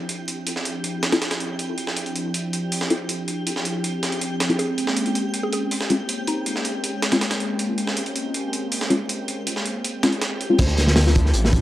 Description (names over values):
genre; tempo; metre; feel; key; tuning
drum and bass, jungle; 160 BPM; 4/4; straight; unclear; A4 = 440 Hz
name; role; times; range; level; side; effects
lush unison pad; sustained chords; 0.0-11.6 s; F3 to E4; -27 LUFS; equal; chorus, phaser
twinkling granular texture; texture; 0.0-11.6 s; G4 to G5; -34 LUFS; equal; built-in reverb
breakbeat sampler-style drum kit; drums; 0.1-10.5 s; hi-hat, snare drum; -26 LUFS; right 1 dB; high-pass filter on hats, high-pass filter on snare, high-pass filter on room
deep mellow chord stab; stabs; 1.1-10.6 s; Ab3 to A4; -23 LUFS; left 2 dB; chorus, dub echo
mallet-like synth pluck; melody; 4.6-6.8, 10.6-10.8 s; Eb4 to C5; -30 LUFS; right 1 dB; chorus, phaser, cassette tape, dub echo
detuned saw bass; bass; 10.6-11.6 s; A1 to D2; -18 LUFS; equal; none
crunchy breakbeat drum kit; drums; 10.6-11.6 s; crash cymbal, hi-hat, kick drum, snare drum; -18 LUFS; equal; none
room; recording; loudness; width
light reverb; dry, gritty hardware recording, vinyl crackle; -20 LUFS; side -14 dB against mid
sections
0.0-10.6 A section; 10.6-11.6 B section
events
filter sweep on analog synth pad 0.0-10.6; drop 10.6-11.6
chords
0.0 Dm9; 4.6 Bbm9; 10.6 Dm9